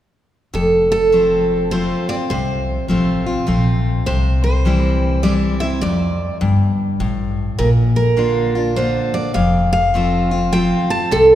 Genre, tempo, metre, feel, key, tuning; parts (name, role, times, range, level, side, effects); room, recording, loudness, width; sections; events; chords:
country; 102 BPM; 3/4; swing 64% on 8ths; F major; A4 = 441 Hz
picked steel-string acoustic guitar; melody; 0.5-11.3 s; A4 to A5; -17 LUFS; right 2 dB
picked steel-string acoustic guitar; accompaniment; 0.5-11.3 s; F2 to F4; -19 LUFS; left 1 dB
upright bass; bass; 0.5-11.3 s; F1 to F2; -20 LUFS; equal
wet church reverb, RT60 2.9 s; recorded in a church or concert hall; -15 LUFS; side -12 dB against mid
0.5-11.3 A section
0.5 F; 4.1 C; 5.8 F; 7.6 Bb; 9.4 F